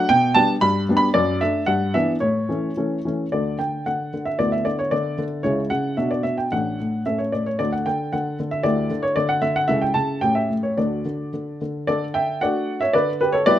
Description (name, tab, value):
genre	classical-period piano sonatina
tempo	113 BPM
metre	2/4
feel	rubato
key	D major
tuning	A4 = 440 Hz
part	warm baby grand piano	solo	0.0-13.6 s	A1 to B5	-19 LUFS	equal	none
room	light reverb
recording	close, detailed microphones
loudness	-19 LUFS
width	side -12 dB against mid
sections	0.0-3.3 A section; 3.3-11.9 B section; 11.9-13.6 B section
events	none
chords	0.1 G/B; 0.6 G; 1.1 D/F#; 1.7 Em7/G; 2.2 A; 3.3 D5; 4.4 E5/D; 5.4 C#madd11; 6.0 Bm; 6.5 D/A; 7.0 A; 7.6 D5; 8.6 Em7/D; 9.7 A/C#; 10.2 A7; 10.8 D; 12.9 Em7/D